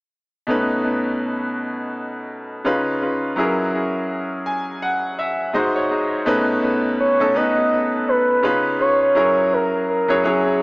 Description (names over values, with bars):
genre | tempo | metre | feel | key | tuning
R&B | 83 BPM | 4/4 | swing 58% on 16ths | unclear | A4 = 440 Hz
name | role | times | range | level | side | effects
bright baby grand piano | accompaniment | 0.5-10.6 s | G#2 to G#5 | -19 LUFS | equal | tape echo
gliding portamento lead | melody | 7.0-10.6 s | G#4 to D#5 | -17 LUFS | equal | chorus
room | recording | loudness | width
moderate echo chamber reverb, RT60 1.6 s, small room ambience | echo-heavy mix, small speaker sound | -17 LUFS | side -28 dB against mid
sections
0.5-6.3 A section; 6.3-10.6 B section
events
grand piano fill 4.1-6.3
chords
0.5 B7; 2.7 C#7; 3.4 F#7; 5.5 G#7; 6.3 B7; 8.4 C#7; 9.2 F#7